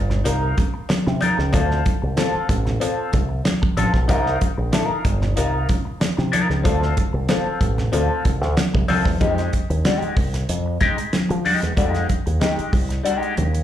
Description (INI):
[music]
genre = funk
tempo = 94 BPM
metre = 4/4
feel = straight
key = unclear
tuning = A4 = 440 Hz
[part]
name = fingered electric bass with an envelope filter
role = bass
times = 0.0-13.6 s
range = G1 to F3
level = -21 LUFS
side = equal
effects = none
[part]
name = clean electric guitar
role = accompaniment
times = 0.1-13.6 s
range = Ab3 to Bb4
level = -23 LUFS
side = left 4 dB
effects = wah, spring reverb, slapback echo
[part]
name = damped 70s drum kit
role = drums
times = 0.1-13.6 s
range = hi-hat, kick drum, snare drum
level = -22 LUFS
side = equal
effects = none
[part]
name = congas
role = percussion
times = 0.1-13.5 s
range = none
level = -26 LUFS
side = right 3 dB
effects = slapback echo
[part]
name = cowbell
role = percussion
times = 0.3-9.0 s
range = none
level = -33 LUFS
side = left 2 dB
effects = slapback echo
[sound]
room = little or no reverb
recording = live gig heard through the venue's PA, club reverb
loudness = -18 LUFS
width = side -11 dB against mid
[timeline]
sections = 0.0-9.2 A section; 9.2-13.6 B section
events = none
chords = 0.0 Cm7; 1.5 Dm7 (rootless); 4.1 Cm7; 6.7 Dm7; 9.2 Fm9